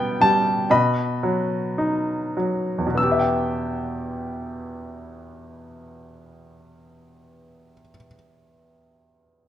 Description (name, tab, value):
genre	classical, lyrical solo piano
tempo	48-62 BPM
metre	4/4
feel	rubato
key	E minor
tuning	A4 = 438 Hz
part	bright baby grand piano	solo	0.0-9.5 s	E2 to E6	-20 LUFS	equal	none
room	moderate recital hall reverb, RT60 1.6 s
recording	none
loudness	-20 LUFS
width	side -11 dB against mid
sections	0.0-3.0 A section; 3.0-7.7 B section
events	slowing down 0.0-3.0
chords	0.0 Gadd9/B; 0.7 B; 3.0 Em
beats	0.70 1.78 | 2.98 4.18 5.34 6.51